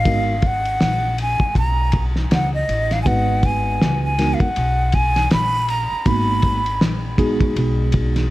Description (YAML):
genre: hip hop, jazz-hop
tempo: 80 BPM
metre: 4/4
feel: swing 58% on 16ths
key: G# dorian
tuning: A4 = 440 Hz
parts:
  - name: breathy hollow jazz flute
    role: melody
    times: 0.0-6.8 s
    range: D#5 to B5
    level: -21 LUFS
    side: equal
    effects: tape echo
  - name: upright bass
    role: bass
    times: 0.0-8.3 s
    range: G#1 to C#2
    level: -21 LUFS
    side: equal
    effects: none
  - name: mellow tine electric piano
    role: accompaniment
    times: 0.1-8.3 s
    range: G#3 to B4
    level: -23 LUFS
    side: right 2 dB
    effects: medium stereo tremolo
  - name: cloth-damped thuddy drum kit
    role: drums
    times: 0.1-8.3 s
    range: hi-hat, kick drum, ride cymbal, snare drum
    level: -21 LUFS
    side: equal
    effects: none
room: small room ambience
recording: none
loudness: -16 LUFS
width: side -17 dB against mid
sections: 0.0-8.3 A section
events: none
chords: 0.0 G#m9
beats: | 0.06 0.81 1.56 2.31 | 3.06 3.81 4.56 5.31 | 6.06 6.81 7.56